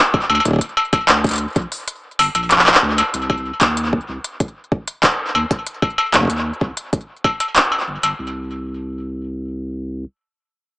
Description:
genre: IDM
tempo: 95 BPM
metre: 4/4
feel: straight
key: C minor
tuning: A4 = 440 Hz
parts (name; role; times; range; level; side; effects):
- electronic kick drum; drums; 0.1-7.4 s; none; -18 LUFS; equal; none
- industrial drum kit; drums; 0.1-8.2 s; handclaps, hi-hat, struck metal; -15 LUFS; equal; tape echo
- warm sub bass; bass; 0.3-10.0 s; G1 to Eb2; -25 LUFS; equal; tube saturation
room: wet spring reverb, RT60 1.8 s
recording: echo-heavy mix, small speaker sound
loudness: -16 LUFS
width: side -21 dB against mid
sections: 0.0-3.1 A section; 3.1-8.2 B section; 8.2-10.7 C section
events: kick drops out 1.9-3.1; filter sweep on sub bass 3.1-8.2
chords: none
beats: | 0.61 1.24 1.88 2.51 | 3.14 3.77 4.40 5.03 | 5.67 6.30 6.93 7.56 | 8.19 8.82 9.45

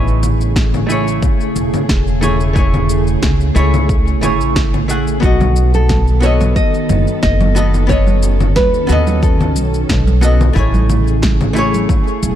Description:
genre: sunset chillout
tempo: 90 BPM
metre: 4/4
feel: swing 54% on 16ths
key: A lydian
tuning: A4 = 440 Hz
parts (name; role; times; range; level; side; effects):
- archtop guitar, miked and amplified; accompaniment; 0.0-12.4 s; A3 to F#5; -20 LUFS; moving between left 3 dB and right 7 dB; auto-pan, low-pass filter, ping-pong delay
- soft string machine; sustained chords; 0.0-12.4 s; C#3 to A4; -20 LUFS; equal; ensemble chorus
- upright bass; bass; 0.0-12.4 s; E1 to D#2; -15 LUFS; equal; none
- electronic shaker, congas and snare drum; drums; 0.1-12.4 s; none; -21 LUFS; left 2 dB; overdrive
- electronic kick drum; drums; 0.6-12.0 s; none; -16 LUFS; equal; overdrive
- nylon-string guitar; melody; 5.2-10.2 s; F#4 to D#5; -19 LUFS; equal; ping-pong delay
- congas; percussion; 5.4-12.4 s; none; -24 LUFS; right 3 dB; none
room: light reverb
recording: dark, warm production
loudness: -11 LUFS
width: side -11 dB against mid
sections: 0.0-12.4 A section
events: none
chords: 0.0 Amaj7; 5.2 B7; 10.6 Amaj7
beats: 0.56 1.23 1.89 | 2.56 3.23 3.89 4.56 | 5.23 5.89 6.56 7.23 | 7.89 8.56 9.23 9.89 | 10.56 11.23 11.89

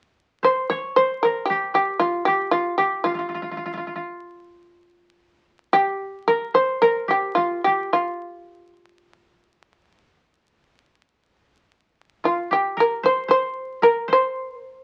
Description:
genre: japanese traditional, Japanese chamber music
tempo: 56 BPM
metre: 2/4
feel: rubato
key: C in sen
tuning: A4 = 440 Hz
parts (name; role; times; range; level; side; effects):
- shamisen; melody; 0.4-8.7, 12.3-14.8 s; F4 to Db5; -22 LUFS; equal; none
- koto; second line; 0.4-14.8 s; F4 to Db5; -29 LUFS; equal; none
room: moderate studio reverb, RT60 0.6 s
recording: very old 78 rpm record, vinyl crackle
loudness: -22 LUFS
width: mono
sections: 0.4-14.8 A section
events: none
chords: none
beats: | 0.43 1.50 | 2.53 3.57 | 4.64 5.72 | 6.79 7.90 | 9.03 10.12 | 11.17 12.23 | 13.29 14.34

